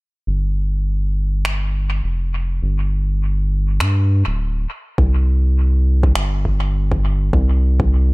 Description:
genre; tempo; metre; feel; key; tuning
ambient dub; 102 BPM; 4/4; swing 58% on 16ths; unclear; A4 = 440 Hz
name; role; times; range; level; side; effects
round analog bass; bass; 0.3-8.1 s; D1 to G2; -16 LUFS; equal; tube saturation
electronic finger snaps; drums; 1.4-6.3 s; none; -27 LUFS; equal; overdrive, studio reverb, dub echo
electronic kick drum; drums; 5.0-7.9 s; none; -19 LUFS; equal; overdrive, studio reverb
room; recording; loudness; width
little or no reverb; echo-heavy mix; -16 LUFS; side -25 dB against mid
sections
0.3-8.1 A section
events
none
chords
none

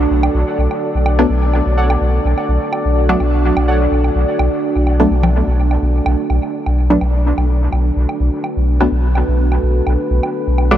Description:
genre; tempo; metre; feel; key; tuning
dub techno; 126 BPM; 4/4; swing 53% on 16ths; B minor; A4 = 440 Hz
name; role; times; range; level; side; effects
deep dark ambient pad; sustained chords; 0.0-10.8 s; D4 to D5; -19 LUFS; right 1 dB; chorus, built-in reverb
pure sine sub bass; bass; 0.0-10.8 s; B1; -15 LUFS; equal; tube saturation
woodblock and congas; percussion; 0.2-10.7 s; none; -26 LUFS; right 2 dB; dub echo
filtered dub chord stab; stabs; 1.2-10.8 s; F#3 to D4; -20 LUFS; equal; chorus, phaser, dub echo
warbly lo-fi synth keys; riff; 1.8-3.8 s; A4 to F#5; -28 LUFS; right 1 dB; chorus, dub echo
room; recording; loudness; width
moderate huge ambient reverb, RT60 6.6 s; dreamy mix soaked in reverb; -13 LUFS; side -11 dB against mid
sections
0.0-6.3 A section; 6.3-10.8 A section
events
filter sweep on synth stab 0.0-6.3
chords
0.0 Bm7

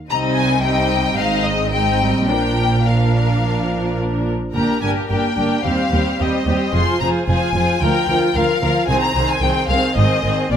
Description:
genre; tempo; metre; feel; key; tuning
quick classical-period movement for string orchestra; 110 BPM; 4/4; rubato; unclear; A4 = 440 Hz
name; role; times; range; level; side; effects
rich studio violin section; melody; 0.1-10.6 s; D5 to C6; -21 LUFS; left 5 dB; none
rich studio violin section; second line; 0.1-10.6 s; D4 to Eb5; -23 LUFS; left 2 dB; none
rich studio viola section; accompaniment; 0.1-10.6 s; Eb3 to F4; -21 LUFS; right 2 dB; none
rich studio cello section; bass; 0.1-10.6 s; C2 to C3; -24 LUFS; right 1 dB; none
rich studio double bass section; bass; 0.1-10.6 s; F1 to Eb2; -22 LUFS; right 2 dB; none
room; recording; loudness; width
light reverb; close, detailed microphones; -15 LUFS; side -8 dB against mid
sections
0.0-10.6 A section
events
none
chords
0.1 Cm; 1.2 Abmaj7; 2.3 Bb; 4.5 Gm; 5.6 Cm/Eb; 6.7 Fm; 7.8 Bb/D; 8.9 Ab/C; 10.0 Ab

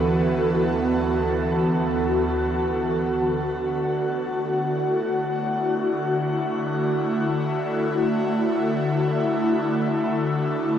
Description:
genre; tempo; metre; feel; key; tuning
ambient; free time; none; none; D major; A4 = 445 Hz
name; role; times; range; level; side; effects
airy breathy pad; solo; 0.0-10.8 s; D2 to A4; -21 LUFS; equal; chorus, phaser, tape echo
room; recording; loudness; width
wet shimmer reverb, RT60 8.2 s; none; -21 LUFS; side -9 dB against mid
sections
0.0-3.0 A section; 3.0-10.8 B section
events
none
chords
0.0 E7sus4/D

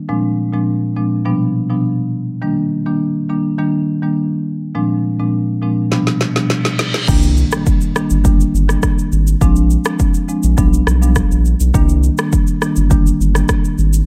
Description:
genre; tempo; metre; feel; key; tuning
afrobeats; 103 BPM; 4/4; straight; C minor; A4 = 440 Hz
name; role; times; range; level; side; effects
marimba with medium mallets; accompaniment; 0.1-13.6 s; Bb2 to D4; -19 LUFS; equal; none
afro-pop drum kit; drums; 5.9-14.1 s; crash cymbal, kick drum, rim click, shaker, snare drum; -18 LUFS; equal; none
reverse cymbal and impact; sound effects; 6.3-9.4 s; none; -29 LUFS; equal; none
saturated sub bass; bass; 7.1-14.0 s; G1 to C2; -16 LUFS; equal; none
room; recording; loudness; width
little or no reverb; none; -15 LUFS; mono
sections
0.0-7.1 A section; 7.1-14.1 B section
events
drum fill 5.9-7.1; reverse cymbal 6.3-7.1; impact 7.1-9.4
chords
0.1 Bb7; 1.3 G7/B; 2.4 Ebmaj7; 4.8 Bb7; 5.9 G7/B; 7.1 Cm7; 9.4 Bb7; 10.6 G7/B; 11.7 Cm7

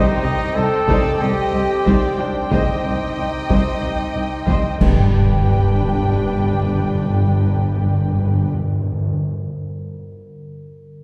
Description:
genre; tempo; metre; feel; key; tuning
cinematic, epic orchestral film score; 92 BPM; 4/4; straight; G major; A4 = 440 Hz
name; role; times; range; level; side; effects
warm studio violin section; melody; 0.0-8.5 s; G5; -34 LUFS; equal; none
mellow hollow large flute ensemble; second line; 0.0-8.5 s; D5 to A5; -33 LUFS; equal; none
rich studio violin section; second line; 0.0-8.5 s; B4 to Eb5; -35 LUFS; equal; none
rich symphonic viola section; accompaniment; 0.0-8.5 s; D4 to Eb5; -32 LUFS; equal; none
mellow French horn section; sustained chords; 0.0-8.5 s; D4 to A4; -28 LUFS; equal; none
warm woodwind section; sustained chords; 0.0-8.5 s; C4 to G5; -33 LUFS; equal; none
mellow trumpet; stabs; 0.0-8.5 s; D4 to A4; -32 LUFS; equal; none
rich studio double bass section; bass; 0.2-8.5 s; G1 to C2; -26 LUFS; equal; none
warm symphonic cello section; bass; 0.2-8.5 s; C2 to G2; -25 LUFS; equal; none
taiko ensemble; drums; 0.9-6.1 s; none; -24 LUFS; equal; none
clash cymbals and concert bass drum; percussion; 4.8-6.4 s; none; -25 LUFS; equal; none
timpani; percussion; 4.8-9.2 s; G2; -24 LUFS; equal; none
room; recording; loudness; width
wet concert hall reverb, RT60 2.4 s; heard from further back in the room; -18 LUFS; mono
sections
0.0-5.1 A section; 5.1-7.7 B section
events
band accent 5.1-5.8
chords
0.0 Cm; 4.8 G

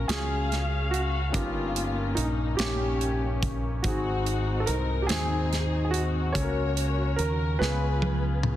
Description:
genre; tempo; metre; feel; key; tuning
slow gospel; 48 BPM (dotted quarters); 6/8; straight; F# major; A4 = 440 Hz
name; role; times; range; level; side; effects
dark studio string section; melody; 0.0-8.6 s; A#3 to E#5; -32 LUFS; left 4 dB; tape echo
warm baby grand piano; melody; 0.0-8.5 s; D#4 to C#5; -33 LUFS; right 3 dB; tape echo
warm grand piano; accompaniment; 0.0-8.6 s; G2 to E#5; -32 LUFS; left 2 dB; none
fingered electric bass; bass; 0.0-8.6 s; G1 to D#2; -28 LUFS; right 1 dB; none
modern studio drum kit; drums; 0.1-8.6 s; hi-hat, kick drum, snare drum, toms; -31 LUFS; right 1 dB; none
room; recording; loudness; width
light reverb, small room ambience; dense, heavily limited modern master, faint mains hum; -24 LUFS; side -12 dB against mid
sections
0.0-8.6 A section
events
drum fill 7.6-8.6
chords
0.0 F#maj7; 1.3 D#7/G; 3.8 G#7; 6.4 F#/C#; 7.6 C#7

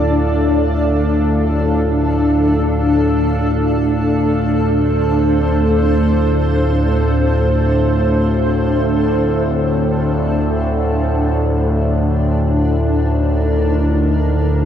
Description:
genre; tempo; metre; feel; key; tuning
dark ambient drone; free time; none; none; D phrygian; A4 = 441 Hz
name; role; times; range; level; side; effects
granular cloud pad; sustained chords; 0.0-14.7 s; D4 to F5; -17 LUFS; equal; built-in reverb
analog drone; drone; 0.0-14.7 s; D2 to A2; -16 LUFS; equal; chorus
room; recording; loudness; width
wet cathedral reverb, RT60 5.8 s; none; -13 LUFS; side -9 dB against mid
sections
0.0-14.7 A section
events
none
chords
0.0 Dm7; 10.7 Eb5/D

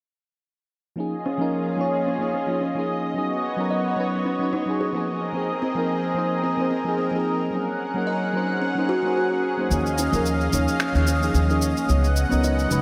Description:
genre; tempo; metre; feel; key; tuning
sunset chillout; 110 BPM; 4/4; swing 56% on 16ths; Eb minor; A4 = 440 Hz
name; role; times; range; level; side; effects
mellow FM electric piano; accompaniment; 1.0-12.8 s; F3 to Db5; -28 LUFS; equal; chorus, phaser, delay
lush unison pad; sustained chords; 1.0-12.8 s; Cb4 to Gb5; -28 LUFS; equal; chorus
buzzing kalimba; arpeggios; 1.3-12.7 s; C4 to Eb5; -31 LUFS; equal; vintage 12-bit sampler grit, low-pass filter, delay
upright bass; bass; 9.7-12.8 s; Db2 to Eb2; -24 LUFS; equal; none
electronic shaker and finger snaps; drums; 9.7-12.8 s; none; -33 LUFS; equal; overdrive
room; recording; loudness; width
wet lush hall reverb, RT60 2.7 s; bright 1980s-style digital production; -23 LUFS; mono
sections
1.0-12.8 A section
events
filter sweep on kalimba 1.0-12.8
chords
1.0 Eb9sus4; 3.2 Db9sus4; 5.1 Bb9sus4; 7.5 Ab9sus4; 9.7 Eb9sus4; 11.9 Db9sus4

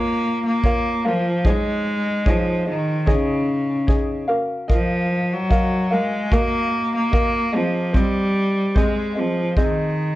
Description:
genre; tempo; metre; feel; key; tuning
acoustic pop; 74 BPM; 4/4; straight; Ab major; A4 = 440 Hz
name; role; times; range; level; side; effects
rich cello; melody; 0.0-10.2 s; Db3 to Bb3; -20 LUFS; equal; plate reverb
ukulele; accompaniment; 0.0-10.2 s; C4 to F5; -24 LUFS; equal; none
kick drum; drums; 0.6-9.8 s; none; -20 LUFS; equal; none
room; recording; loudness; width
moderate studio reverb, RT60 0.5 s; worn, warbling old tape, cassette tape, warbly pitch drift; -18 LUFS; side -16 dB against mid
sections
0.0-10.2 A section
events
none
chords
0.0 Bbm; 1.5 Dbsus2; 4.3 Ebmadd9; 7.5 Ab

